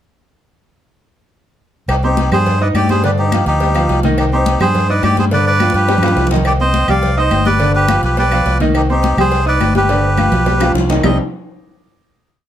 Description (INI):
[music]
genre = latin, salsa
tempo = 210 BPM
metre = 4/4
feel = straight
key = C harmonic minor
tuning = A4 = 440 Hz
[part]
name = melodica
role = melody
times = 1.9-11.2 s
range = Eb4 to F5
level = -16 LUFS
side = equal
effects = none
[part]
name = fingered electric bass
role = bass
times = 1.9-11.2 s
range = G1 to G2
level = -16 LUFS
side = equal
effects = none
[part]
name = agogo bells and timbales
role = percussion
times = 1.9-11.1 s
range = none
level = -25 LUFS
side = right 1 dB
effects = none
[part]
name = claves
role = percussion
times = 1.9-11.1 s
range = none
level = -28 LUFS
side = left 2 dB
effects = none
[part]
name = congas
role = percussion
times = 1.9-11.1 s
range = none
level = -21 LUFS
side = left 2 dB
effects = none
[part]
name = cowbell and bongos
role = percussion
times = 1.9-11.1 s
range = none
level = -24 LUFS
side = left 3 dB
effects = none
[part]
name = clear concert grand piano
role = accompaniment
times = 2.0-11.2 s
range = C3 to Eb6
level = -18 LUFS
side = equal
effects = none
[sound]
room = light reverb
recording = close, detailed microphones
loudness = -11 LUFS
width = side -11 dB against mid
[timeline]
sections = 1.9-11.0 montuno (vamp); 11.0-12.2 final chord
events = drum fill 5.6-6.5, 9.9-11.0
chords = 1.9 Cm; 3.0 G5; 4.2 Cm; 5.3 G7; 6.5 Cmadd9; 7.6 G7; 8.7 Cmadd9; 9.9 G7; 11.0 Cmadd9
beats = | 1.89 2.18 2.46 2.75 | 3.04 3.32 3.61 3.89 | 4.18 4.46 4.75 5.03 | 5.32 5.60 5.89 6.17 | 6.46 6.74 7.03 7.31 | 7.60 7.88 8.17 8.46 | 8.74 9.03 9.32 9.61 | 9.89 10.18 10.47 10.75 | 11.04